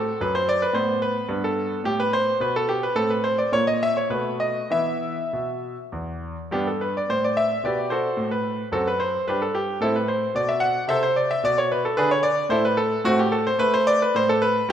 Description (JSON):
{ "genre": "classical, baroque-style suite movement for grand piano", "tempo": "110 BPM", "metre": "3/4", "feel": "rubato", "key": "E minor, G major from 6.5 s", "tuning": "A4 = 440 Hz", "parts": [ { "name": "bright concert grand piano", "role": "solo", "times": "0.0-14.7 s", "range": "E2 to F#5", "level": "-20 LUFS", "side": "equal", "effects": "none" } ], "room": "wet scoring stage reverb, RT60 1.8 s", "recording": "none", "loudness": "-20 LUFS", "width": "side -9 dB against mid", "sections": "0.0-6.5 A section; 6.5-14.7 A section", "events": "none", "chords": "0.0 F#dim; 0.8 Amadd9; 1.3 Gadd9; 3.0 Amadd9; 3.5 N.C.; 4.1 B7; 4.7 E5; 6.5 G; 8.2 F#dim/A; 9.3 G5; 9.8 Am; 11.4 G#dim/B (rootless); 12.5 A5; 13.0 Am13; 14.1 N.C.", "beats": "0.21 0.76 | 1.30 1.85 2.40 | 2.96 3.52 4.10 | 4.71 5.33 5.92 | 6.51 7.08 7.63 | 8.18 8.72 9.27 | 9.81 10.35 10.89 | 11.43 11.96 12.49 | 13.04 13.59 14.14 | 14.69" }